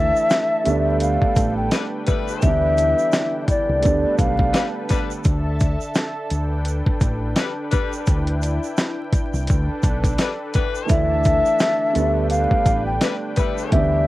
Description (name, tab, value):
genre	hip hop, boom-bap hip-hop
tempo	85 BPM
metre	4/4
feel	swing 58% on 16ths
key	unclear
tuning	A4 = 440 Hz
part	breathy mellow concert flute	melody	0.0-4.7, 10.9-14.1 s	D5 to G5	-20 LUFS	left 2 dB	high-pass filter, low-pass filter, cassette tape, analog delay
part	dark grand piano	accompaniment	0.0-5.3, 10.9-14.1 s	E3 to E4	-25 LUFS	right 5 dB	cassette tape, high-pass filter, low-pass filter
part	warm analog pad	sustained chords	0.0-14.1 s	D3 to A5	-29 LUFS	equal	wide subtle chorus, high-pass filter, low-pass filter, cassette tape
part	deep dub fingered electric bass	bass	0.0-14.1 s	A1 to D2	-22 LUFS	equal	none
part	egg shaker	percussion	0.2-13.7 s	none	-40 LUFS	right 9 dB	none
part	dusty soul sampler-style drum kit	drums	0.3-13.9 s	hi-hat, kick drum, snare drum	-20 LUFS	equal	none
part	edgy saxophone section	stabs	1.7-13.8 s	E3 to B4	-28 LUFS	left 8 dB	high-pass filter, low-pass filter, cassette tape, analog delay
room	little or no reverb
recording	home recording on cassette, vinyl crackle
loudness	-18 LUFS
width	side -17 dB against mid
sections	0.0-14.1 A section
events	break 5.2-10.9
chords	0.0 Dsus2; 0.7 Gadd9; 2.4 Cmaj7/D (rootless); 3.8 Gadd9; 5.2 Dsus2; 6.3 Gadd9; 8.1 Cmaj7/D (rootless); 9.5 Gadd9; 10.9 Dsus2; 12.0 Gadd9